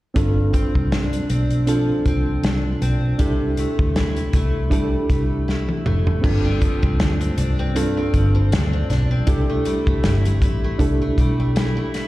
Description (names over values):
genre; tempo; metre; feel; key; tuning
indie pop, bedroom pop; 79 BPM; 4/4; swing 55% on 16ths; unclear; A4 = 440 Hz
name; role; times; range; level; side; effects
reed electric piano; accompaniment; 0.1-12.1 s; C4 to A4; -24 LUFS; right 2 dB; fast tremolo, plate reverb
picked steel-string acoustic guitar; accompaniment; 0.2-12.1 s; G2 to E4; -27 LUFS; left 2 dB; wide subtle chorus, vibrato effect, plate reverb, slapback echo
vintage muted fingered electric bass; bass; 0.2-11.8 s; F1 to D2; -20 LUFS; equal; none
loose indie drum kit; drums; 0.2-12.1 s; crash cymbal, hi-hat, kick drum, snare drum, toms; -21 LUFS; equal; none
room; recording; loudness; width
light reverb; live gig heard through the venue's PA, recital hall reverb; -17 LUFS; side -17 dB against mid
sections
0.2-6.2 A section; 6.2-12.1 B section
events
drum fill 5.5-6.2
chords
0.2 G7sus4; 3.2 C6; 6.2 G7sus4